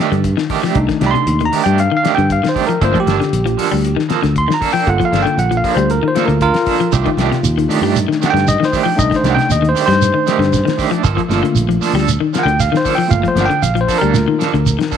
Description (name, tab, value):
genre	afrobeat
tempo	117 BPM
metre	4/4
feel	straight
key	C dorian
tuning	A4 = 437 Hz
part	electric guitar at the edge of break-up	arpeggios	0.0-15.0 s	C3 to G3	-19 LUFS	left 8 dB	none
part	electric guitar at the edge of break-up	stabs	0.0-15.0 s	Eb3 to A4	-21 LUFS	right 12 dB	tremolo, slapback echo
part	cloth-damped thuddy drum kit	drums	0.0-15.0 s	hi-hat, kick drum, snare drum	-23 LUFS	left 4 dB	none
part	fingered electric bass	bass	0.1-14.8 s	G1 to G2	-17 LUFS	right 1 dB	none
part	bell-like tine electric piano	accompaniment	0.7-15.0 s	A3 to C6	-17 LUFS	equal	slow stereo tremolo
part	shekere	percussion	6.9-15.0 s	none	-20 LUFS	right 7 dB	none
room	light reverb, small room ambience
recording	1960s-style stereo with parts hard left and right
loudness	-12 LUFS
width	side -8 dB against mid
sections	0.0-15.0 A section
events	tine electric piano solo 0.0-15.0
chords	0.0 Cm69; 2.8 Gm9; 6.9 Cm69; 11.0 Gm9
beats	0.23 | 0.75 1.26 1.78 2.29 | 2.81 3.32 3.84 4.35 | 4.87 5.38 5.89 6.41 | 6.92 7.44 7.95 8.47 | 8.98 9.50 10.01 10.53 | 11.04 11.56 12.07 12.59 | 13.10 13.62 14.14 14.65